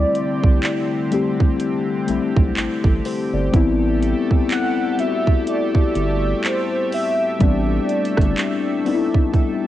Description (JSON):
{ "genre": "contemporary R&B", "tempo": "62 BPM", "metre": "4/4", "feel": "swing 58% on 16ths", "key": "A minor", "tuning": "A4 = 439 Hz", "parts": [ { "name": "warm velvety synth lead", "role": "melody", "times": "0.0-9.4 s", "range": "C5 to F#5", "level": "-24 LUFS", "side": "right 2 dB", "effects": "chorus, cassette tape, tape echo" }, { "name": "muted felt-like synth keys", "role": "accompaniment", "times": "0.0-9.7 s", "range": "G3 to D5", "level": "-20 LUFS", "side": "left 4 dB", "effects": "chorus, cassette tape" }, { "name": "chorused pulse-width pad", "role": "sustained chords", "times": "0.0-9.7 s", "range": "D3 to E5", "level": "-28 LUFS", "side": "right 2 dB", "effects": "cassette tape" }, { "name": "round analog bass", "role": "bass", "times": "0.0-8.3 s", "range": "G1 to C2", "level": "-22 LUFS", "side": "right 2 dB", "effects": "none" }, { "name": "trap drum kit", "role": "drums", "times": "0.1-9.6 s", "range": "handclaps, hi-hat, kick drum, rim click", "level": "-18 LUFS", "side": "right 2 dB", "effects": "vintage 12-bit sampler grit, cassette tape" } ], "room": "light reverb, digital ambience", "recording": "home recording on cassette, nothing above 10.4 kHz", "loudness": "-17 LUFS", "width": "side -13 dB against mid", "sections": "0.0-9.7 A section", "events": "none", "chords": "0.0 D7sus4; 3.5 Am9" }